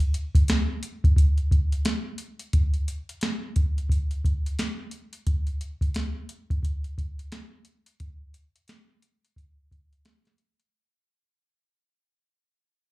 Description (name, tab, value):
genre	indie pop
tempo	88 BPM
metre	4/4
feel	swing 60% on 16ths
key	none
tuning	none
part	soft vintage rhythm box	drums	0.0-10.7 s	hi-hat, kick drum, snare drum	-23 LUFS	equal	none
room	light reverb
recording	live gig heard through the venue's PA, club reverb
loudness	-23 LUFS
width	side -20 dB against mid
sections	0.0-10.7 A section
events	fade-out 0.0-10.7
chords	none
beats	0.48 1.17 1.85 | 2.53 3.22 3.90 4.58 | 5.26 5.95 6.63 7.32 | 8.00 8.68 9.37 10.05